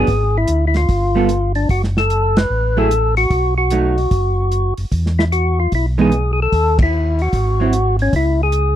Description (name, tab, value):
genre	soul jazz organ trio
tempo	149 BPM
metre	4/4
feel	swing 66% on 8ths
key	unclear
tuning	A4 = 440 Hz
part	percussive tonewheel organ	melody	0.0-8.8 s	C#4 to B4	-18 LUFS	left 2 dB	slow rotary speaker, overdrive
part	vintage hollow-body jazz guitar	accompaniment	0.0-7.7 s	E3 to A4	-17 LUFS	right 5 dB	none
part	mellow tonewheel organ	bass	0.0-8.8 s	F#1 to E2	-17 LUFS	equal	chorus vibrato, slow rotary speaker
part	warm soul drum kit	drums	0.1-8.6 s	hi-hat, kick drum, ride cymbal, snare drum	-19 LUFS	equal	none
room	small room ambience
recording	dry, close 1970s-style studio recording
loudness	-14 LUFS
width	side -11 dB against mid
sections	0.0-8.8 A section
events	band accent 2.3, 6.7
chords	0.1 E7b9/G#; 0.9 G9; 1.7 F#m; 3.3 B7; 4.9 E; 6.5 D#dim; 7.3 G#aug7; 8.1 C#m